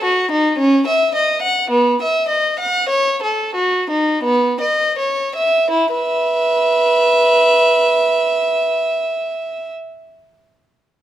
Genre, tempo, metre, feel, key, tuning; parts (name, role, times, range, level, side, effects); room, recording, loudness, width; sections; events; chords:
classical, baroque-style suite movement for unaccompanied violin; 39-57 BPM; 3/4; rubato; A4 = 435 Hz
warm violin; solo; 0.0-9.7 s; B3 to F#5; -14 LUFS; right 1 dB
light reverb; close, detailed microphones; -14 LUFS; side -12 dB against mid
0.0-5.7 A section; 5.7-10.0 B section
slowing down 0.0-5.7
0.0 B (rootless); 0.6 C#m; 1.7 E5/B; 4.2 B; 5.7 E5